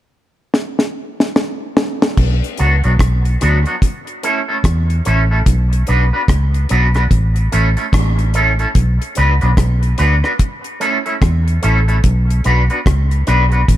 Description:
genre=dub reggae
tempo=73 BPM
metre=4/4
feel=swing 61% on 16ths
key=B minor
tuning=A4 = 436 Hz
part: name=deep reggae drum kit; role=drums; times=0.5-13.8 s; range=crash cymbal, hi-hat, kick drum, rim click, snare drum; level=-16 LUFS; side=equal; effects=none
part: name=vintage muted fingered electric bass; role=bass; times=2.2-13.8 s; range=A1 to E2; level=-14 LUFS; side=equal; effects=none
part: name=electric guitar with an envelope filter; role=accompaniment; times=2.6-13.6 s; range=F#3 to B4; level=-18 LUFS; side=right 1 dB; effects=lush chorus, dub echo
room=studio reverb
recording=none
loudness=-13 LUFS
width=side -13 dB against mid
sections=0.0-2.2 A section; 2.2-13.8 B section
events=drum fill 0.5-2.2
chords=0.0 N.C.; 2.2 Bm; 3.8 A; 5.5 Bm; 7.1 A; 8.8 Bm; 10.4 A; 12.0 Bm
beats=0.53 1.35 | 2.17 2.99 3.82 4.64 | 5.46 6.28 7.11 7.93 | 8.75 9.57 10.39 11.22 | 12.04 12.86 13.68

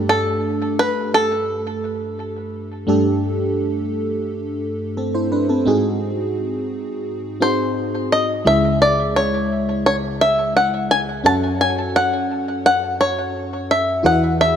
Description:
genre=pop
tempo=86 BPM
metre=4/4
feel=straight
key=unclear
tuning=A4 = 439 Hz
part: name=FM electric piano with soft pad layer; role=accompaniment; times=0.0-14.6 s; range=C#2 to F#5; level=-20 LUFS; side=equal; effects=chorus
part: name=bluegrass banjo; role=melody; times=0.1-2.5, 7.4-14.6 s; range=A4 to A5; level=-18 LUFS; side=equal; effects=tape echo
room=moderate plate reverb, RT60 2.8 s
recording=none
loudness=-17 LUFS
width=side -8 dB against mid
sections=0.0-2.9 A section; 2.9-8.5 B section; 8.5-14.6 C section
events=none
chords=0.0 Gsus2; 5.7 G#7; 8.5 C#m; 11.2 F#m; 14.0 Eadd9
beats=| 0.09 0.78 1.48 2.18 | 2.88 3.58 4.27 4.97 | 5.67 6.37 7.06 7.76 | 8.46 9.16 9.85 10.55 | 11.25 11.95 12.64 13.34 | 14.04

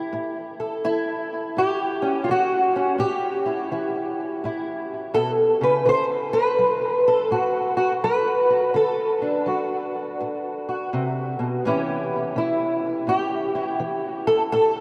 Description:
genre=acoustic country blues, solo or duo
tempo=83 BPM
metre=4/4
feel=swing 65% on 8ths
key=A mixolydian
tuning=A4 = 440 Hz
part: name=fingerpicked old ladder-braced acoustic guitar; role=solo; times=0.0-14.8 s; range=A2 to C5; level=-23 LUFS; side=equal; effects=ensemble chorus, tape echo
room=wet huge ambient reverb, RT60 9.1 s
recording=dreamy mix soaked in reverb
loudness=-23 LUFS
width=mono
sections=0.0-14.8 A section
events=none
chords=0.0 A7; 5.9 D; 11.6 A7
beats=| 0.12 0.84 1.55 2.27 | 2.99 3.70 4.42 5.14 | 5.86 6.58 7.30 8.02 | 8.74 9.46 10.18 10.90 | 11.62 12.35 13.07 13.79 | 14.51

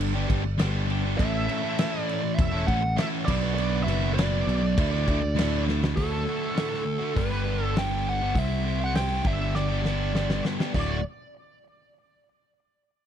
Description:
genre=classic rock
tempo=100 BPM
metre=4/4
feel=straight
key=D mixolydian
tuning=A4 = 440 Hz
part: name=sludgy distorted guitar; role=riff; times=0.0-11.0 s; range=D2 to C5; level=-28 LUFS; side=equal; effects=overdrive
part: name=picked electric bass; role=bass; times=0.0-11.0 s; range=D1 to D2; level=-27 LUFS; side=equal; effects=none
part: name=big rock drum kit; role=drums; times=0.0-10.9 s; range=crash cymbal, hi-hat, kick drum, snare drum, splash cymbal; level=-29 LUFS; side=equal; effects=none
part: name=fuzz lead guitar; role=melody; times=1.2-11.0 s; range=A4 to G5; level=-31 LUFS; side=right 2 dB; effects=wah, distortion, tape echo
room=little or no reverb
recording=dry, close 1970s-style studio recording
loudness=-23 LUFS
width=side -9 dB against mid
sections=0.0-6.0 A section; 6.0-10.7 B section; 10.7-13.1 C section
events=drum fill 5.7, 9.5-10.7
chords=0.0 G; 1.2 A; 3.3 Bm; 4.8 Dsus2; 6.0 D; 7.2 G; 8.4 C; 9.2 G; 10.7 D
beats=0.59 | 1.18 1.78 2.38 2.97 | 3.57 4.17 4.76 5.36 | 5.96 6.56 7.16 7.75 | 8.35 8.95 9.55 10.14 | 10.74

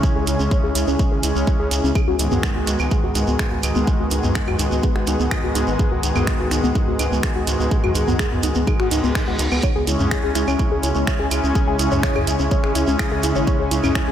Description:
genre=melodic techno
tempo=125 BPM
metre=4/4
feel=straight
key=C# minor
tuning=A4 = 441 Hz
part: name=lush unison pad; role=sustained chords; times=0.0-14.1 s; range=C#3 to G#4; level=-26 LUFS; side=equal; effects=chorus, sidechain pumping
part: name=tight sequenced synth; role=arpeggios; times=0.0-14.1 s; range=B3 to C#5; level=-24 LUFS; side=left 1 dB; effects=chorus, sidechain pumping, analog delay
part: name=brassy analog pad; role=stabs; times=0.0-14.1 s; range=G#2 to C#4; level=-26 LUFS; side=left 1 dB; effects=chorus, sidechain pumping, analog delay
part: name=electronic kick drum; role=drums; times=0.0-14.1 s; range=none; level=-21 LUFS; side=equal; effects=none
part: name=shekere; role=percussion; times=0.0-14.1 s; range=none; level=-32 LUFS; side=right 4 dB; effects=none
part: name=ethereal airy pad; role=texture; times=0.8-14.1 s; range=B3 to G#5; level=-34 LUFS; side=equal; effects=none
part: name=gritty driven synth bass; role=bass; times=0.2-14.1 s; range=G#1 to C#2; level=-23 LUFS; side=equal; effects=sidechain pumping
part: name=house drum kit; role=drums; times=0.3-14.1 s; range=claves, finger snaps, hi-hat, toms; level=-26 LUFS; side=right 1 dB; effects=sidechain pumping on cymbals, sidechain pumping on hats, sidechain pumping on perc, sidechain pumping on toms
part: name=reverse cymbal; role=sound effects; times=8.9-9.6 s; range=none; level=-31 LUFS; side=right 1 dB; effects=none
room=moderate lush hall reverb, RT60 1.8 s, digital ambience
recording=dreamy mix soaked in reverb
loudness=-17 LUFS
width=side -10 dB against mid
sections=0.0-14.1 A section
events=filter sweep on synth arpeggio sound 0.0-14.1; filter sweep on analog synth pad 0.0-14.1; reverse cymbal 8.9-9.6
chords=0.0 C#m; 2.0 G#m7; 9.6 C#m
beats=| 0.03 0.51 0.99 1.47 | 1.95 2.43 2.91 3.39 | 3.87 4.35 4.83 5.31 | 5.79 6.27 6.75 7.23 | 7.71 8.19 8.67 9.15 | 9.63 10.11 10.59 11.07 | 11.55 12.03 12.51 12.99 | 13.47 13.95

